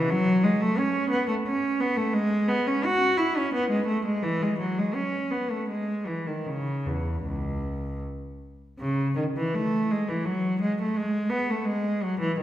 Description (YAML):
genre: classical, baroque-style suite movement for unaccompanied cello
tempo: 75-92 BPM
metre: 3/4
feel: rubato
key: C# minor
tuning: A4 = 438 Hz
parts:
  - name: rich cello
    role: solo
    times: 0.0-12.4 s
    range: C#2 to F#4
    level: -24 LUFS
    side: equal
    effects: none
room: wet recital hall reverb, RT60 1.6 s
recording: recorded in a church or concert hall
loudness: -24 LUFS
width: side -12 dB against mid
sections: 0.0-8.8 A section; 8.8-12.4 B section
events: none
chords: none